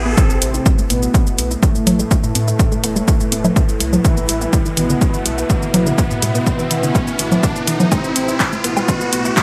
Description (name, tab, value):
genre	melodic techno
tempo	124 BPM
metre	4/4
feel	straight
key	A minor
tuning	A4 = 440 Hz
part	soft supersaw	melody	0.0-9.4 s	A2 to E4	-25 LUFS	equal	low-pass filter, dub echo
part	dark analog pad	sustained chords	0.0-9.4 s	A3 to E5	-29 LUFS	equal	subtle chorus, sidechain pumping
part	unison pluck	arpeggios	0.0-9.4 s	D3 to A4	-28 LUFS	equal	none
part	round analog bass	bass	0.0-9.3 s	E1 to A2	-26 LUFS	equal	sidechain pumping
part	riser	sound effects	0.0-9.4 s	none	-29 LUFS	equal	none
part	bowed-like drone	drone	1.4-9.4 s	A2	-34 LUFS	equal	none
part	electronic kick drum	drums	0.2-9.4 s	none	-17 LUFS	equal	studio reverb
part	techno drum kit	drums	0.2-9.4 s	congas, handclaps, hi-hat, shaker, woodblock	-21 LUFS	equal	overdrive, sidechain pumping on perc, low-pass filter on perc, studio reverb, sidechain pumping on hats, low-pass filter on hats, low-pass filter on snare
room	digital ambience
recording	high-pass filter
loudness	-16 LUFS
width	mono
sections	0.2-9.4 A section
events	riser 0.0, 0.2-9.4; build-up 0.2-9.4; filter sweep on supersaw synth 0.2-9.4; filter sweep 0.2-9.4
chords	0.2 Am; 4.0 E5/A; 7.9 Am